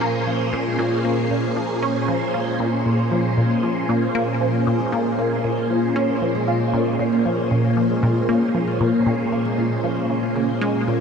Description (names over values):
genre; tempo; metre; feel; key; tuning
ambient, sequencer-driven space music; 116 BPM; 4/4; straight; Bb minor; A4 = 439 Hz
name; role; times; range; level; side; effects
phased string machine; sustained chords; 0.0-11.0 s; Bb2 to C5; -21 LUFS; right 1 dB; ensemble chorus, phaser
concert harp; arpeggios; 0.0-11.0 s; Ab3 to Bb4; -30 LUFS; moving between left 7 dB and equal; auto-pan, analog delay, shimmer reverb
resonant blip pluck; riff; 0.0-11.0 s; Bb2 to F4; -22 LUFS; equal; phaser, analog delay, shimmer reverb
room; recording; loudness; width
wet huge ambient reverb, RT60 8.4 s; dreamy mix soaked in reverb, cassette tape; -18 LUFS; side -6 dB against mid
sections
0.0-11.0 A section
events
fade-in on harp 0.0-11.0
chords
0.0 Bbm7